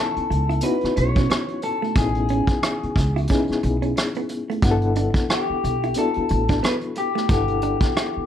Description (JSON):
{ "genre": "R&B, neo-soul", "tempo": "90 BPM", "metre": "4/4", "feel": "swing 58% on 16ths", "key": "unclear", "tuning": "A4 = 441 Hz", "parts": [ { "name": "electric guitar through a small old amp", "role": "melody", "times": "0.0-8.3 s", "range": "G4 to C#5", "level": "-25 LUFS", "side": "left 3 dB", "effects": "spring reverb, slapback echo" }, { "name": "vintage hollow-body jazz guitar", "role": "second line", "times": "0.0-8.1 s", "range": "A3 to E4", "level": "-29 LUFS", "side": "right 8 dB", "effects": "slapback echo" }, { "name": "reed electric piano", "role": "accompaniment", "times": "0.0-8.3 s", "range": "B3 to G#5", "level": "-25 LUFS", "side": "left 4 dB", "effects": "fast tremolo" }, { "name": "upright bass", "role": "bass", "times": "0.2-8.2 s", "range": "G1 to C#2", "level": "-24 LUFS", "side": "right 1 dB", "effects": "none" }, { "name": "vintage brush drum kit", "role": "drums", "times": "0.2-8.1 s", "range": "hi-hat, kick drum, rim click", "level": "-22 LUFS", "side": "equal", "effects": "none" } ], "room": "light reverb", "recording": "dark, warm production", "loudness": "-19 LUFS", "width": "side -10 dB against mid", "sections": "0.0-8.3 A section", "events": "none", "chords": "0.0 Amaj9; 4.6 Gmaj9", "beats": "0.63 1.29 | 1.96 2.63 3.29 3.96 | 4.63 5.29 5.96 6.63 | 7.29 7.96" }